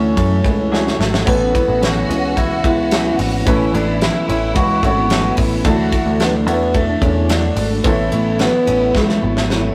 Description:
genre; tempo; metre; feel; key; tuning
jangly indie pop; 109 BPM; 4/4; straight; A major; A4 = 442 Hz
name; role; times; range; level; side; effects
electric guitar through a small old amp; melody; 0.0-9.7 s; A3 to F#4; -22 LUFS; equal; none
bright upright piano; accompaniment; 0.0-9.7 s; A3 to C#5; -29 LUFS; equal; none
picked steel-string acoustic guitar; accompaniment; 0.0-9.7 s; D3 to C#5; -27 LUFS; equal; none
twelve-string electric guitar; arpeggios; 0.0-9.7 s; E3 to F#4; -26 LUFS; equal; none
picked electric bass; bass; 0.0-9.7 s; G#1 to F#2; -22 LUFS; equal; none
modern studio drum kit; drums; 0.2-9.6 s; hi-hat, kick drum, ride cymbal, snare drum, splash cymbal; -22 LUFS; equal; none
warm studio violin section; second line; 1.3-9.7 s; D4 to F#4; -29 LUFS; equal; none
room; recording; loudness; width
moderate stone room reverb, RT60 0.9 s; rough rehearsal-room recording; -16 LUFS; mono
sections
0.0-9.7 A section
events
drum fill 0.7-1.3, 8.9-9.7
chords
0.0 Dadd9; 1.3 Aadd9; 5.7 Dadd9; 7.8 Aadd9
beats
0.17 0.72 | 1.27 1.81 2.36 2.91 | 3.46 4.01 4.56 5.11 | 5.66 6.21 6.75 7.30 | 7.85 8.40 8.95 9.49

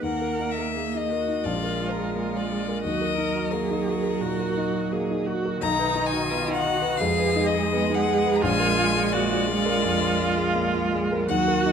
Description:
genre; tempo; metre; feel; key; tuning
classical, slow romantic movement for piano quartet; 85 BPM; 4/4; uneven beats, rubato; unclear; A4 = 439 Hz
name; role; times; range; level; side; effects
warm violin; melody; 0.0-11.7 s; A#4 to Bb5; -27 LUFS; left 8 dB; none
rich cello; second line; 0.0-11.7 s; D#3 to A#3; -29 LUFS; right 7 dB; none
dark baby grand piano; accompaniment; 0.0-11.7 s; A#1 to B4; -27 LUFS; left 2 dB; none
rich viola; accompaniment; 0.0-11.7 s; D#4 to A#4; -28 LUFS; right 4 dB; none
room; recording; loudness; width
moderate recital hall reverb, RT60 1.4 s; close, detailed microphones; -22 LUFS; side -7 dB against mid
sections
0.0-11.7 A section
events
none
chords
0.0 D#5; 1.5 A#5; 2.8 D#m; 5.6 B; 7.0 Fm7b5; 8.4 Bb7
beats
| 0.02 0.75 1.46 2.15 | 2.83 3.51 4.21 4.91 | 5.61 6.28 6.99 7.70 | 8.41 9.12 9.83 10.56 | 11.29

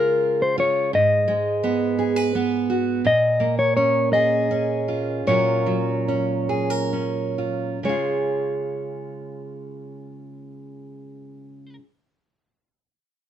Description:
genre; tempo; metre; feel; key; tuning
folk; 42-57 BPM (dotted quarters); 6/8; straight; Db major; A4 = 439 Hz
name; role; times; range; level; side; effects
mellow electric guitar; melody; 0.0-11.8 s; Bb4 to Eb5; -21 LUFS; left 2 dB; harmonic tremolo
fingerpicked steel-string acoustic guitar; accompaniment; 0.0-11.8 s; Ab2 to Cb5; -23 LUFS; right 3 dB; none
room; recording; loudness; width
light reverb; none; -19 LUFS; side -10 dB against mid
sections
0.0-7.8 A section; 7.8-13.3 B section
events
slowing down 3.0-7.8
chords
0.0 Db; 0.9 Abm7; 3.0 Bbm7; 5.3 Gbmaj7/Bb; 7.8 Db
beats
| 0.93 1.99 | 3.05 4.13 | 5.25 6.47 | 7.83 9.27 | 10.71

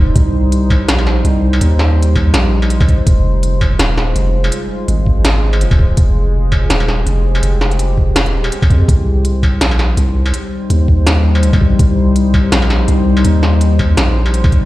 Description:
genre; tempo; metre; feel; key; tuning
half-time drum and bass; 165 BPM; 4/4; swing 56% on 16ths, half-time; C minor; A4 = 440 Hz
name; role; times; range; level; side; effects
deep dark ambient pad; sustained chords; 0.0-14.7 s; G3 to C5; -19 LUFS; left 2 dB; chorus, built-in reverb, sidechain pumping
long sustained 808-style bass; bass; 0.0-14.5 s; Eb1 to F2; -13 LUFS; equal; none
electronic kick drum; drums; 0.2-14.6 s; none; -11 LUFS; equal; none
industrial drum kit; drums; 0.2-14.6 s; hi-hat, snare drum, struck metal; -19 LUFS; equal; none
room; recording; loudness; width
little or no reverb; played on a big sound system in a bare room, large studio reverb; -10 LUFS; side -17 dB against mid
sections
0.0-14.7 A section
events
none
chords
0.0 Cm; 3.1 Fm; 8.9 Cm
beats
| 0.16 0.52 0.89 1.25 | 1.61 1.98 2.34 2.70 | 3.07 3.43 3.79 4.16 | 4.52 4.88 5.25 5.61 | 5.98 6.34 6.70 7.07 | 7.43 7.79 8.16 8.52 | 8.88 9.25 9.61 9.98 | 10.34 10.70 11.07 11.43 | 11.79 12.16 12.52 12.88 | 13.25 13.61 13.98 14.34

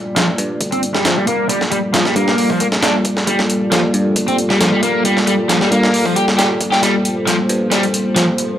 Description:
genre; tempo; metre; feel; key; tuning
breakbeat, breaks; 135 BPM; 4/4; straight; G minor; A4 = 441 Hz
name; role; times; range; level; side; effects
dark analog pad; sustained chords; 0.0-8.6 s; G3 to D5; -18 LUFS; equal; chorus, sidechain pumping
crunchy overdriven guitar; riff; 0.2-8.2 s; F3 to G4; -17 LUFS; equal; low-pass filter, analog delay
breakbeat sampler-style drum kit; drums; 0.2-8.5 s; hi-hat, kick drum, snare drum; -18 LUFS; equal; high-pass filter on snare, studio reverb, high-pass filter on hats, high-pass filter on kick
picked electric bass; bass; 0.4-8.5 s; F1 to G2; -26 LUFS; equal; none
room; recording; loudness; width
light reverb, digital ambience; dry, gritty hardware recording; -13 LUFS; side -11 dB against mid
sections
0.0-8.6 A section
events
build-up 0.0-8.6; filter sweep on overdriven electric guitar 0.0-8.6; drum fill 6.8-8.6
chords
0.0 Gm9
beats
0.16 0.61 1.05 | 1.50 1.94 2.38 2.83 | 3.27 3.72 4.16 4.61 | 5.05 5.50 5.94 6.38 | 6.83 7.27 7.72 8.16

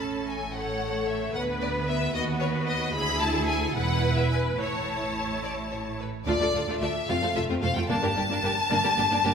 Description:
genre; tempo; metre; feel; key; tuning
quick classical-period movement for string orchestra; 74 BPM (dotted quarters); 6/8; straight; A major, D minor from 6.3 s; A4 = 440 Hz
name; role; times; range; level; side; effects
clear symphonic violin section; melody; 0.0-9.3 s; C#5 to B5; -28 LUFS; left 3 dB; none
rich symphonic viola section; accompaniment; 0.0-9.3 s; A3 to C#5; -30 LUFS; right 2 dB; none
clear symphonic cello section; bass; 0.0-9.3 s; D2 to A2; -34 LUFS; right 2 dB; none
warm symphonic double bass section; bass; 0.0-9.3 s; E1 to D#2; -33 LUFS; right 2 dB; none
bright symphonic violin section; second line; 0.6-9.3 s; Bb3 to D5; -32 LUFS; left 2 dB; none
room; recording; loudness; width
wet concert hall reverb, RT60 2.4 s; minimal, uncompressed stereo recording; -24 LUFS; side -7 dB against mid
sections
0.0-6.3 A section; 6.3-9.3 B section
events
none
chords
0.0 A; 1.4 Bm/D; 2.2 B/D#; 3.0 E7/D; 3.8 E5; 4.6 A; 6.3 Dm; 7.1 F; 7.9 Gm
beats
0.55 | 1.35 2.15 | 2.95 3.77 | 4.59 5.43 | 6.27 7.09 | 7.89 8.71

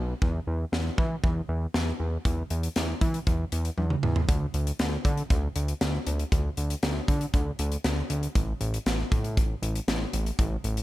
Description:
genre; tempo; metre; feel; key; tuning
synth-pop; 118 BPM; 4/4; straight; unclear; A4 = 436 Hz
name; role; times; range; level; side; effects
fat analog bass; bass; 0.0-10.8 s; A1 to E3; -28 LUFS; equal; none
modern studio drum kit; drums; 0.2-10.8 s; hi-hat, kick drum, snare drum, toms; -27 LUFS; equal; none
room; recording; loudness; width
light reverb; none; -25 LUFS; side -16 dB against mid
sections
0.0-10.8 A section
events
drum fill 3.8-4.3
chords
none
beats
| 0.22 0.73 1.24 1.75 | 2.25 2.76 3.27 3.78 | 4.29 4.79 5.30 5.81 | 6.32 6.83 7.34 7.85 | 8.36 8.86 9.37 9.88 | 10.39

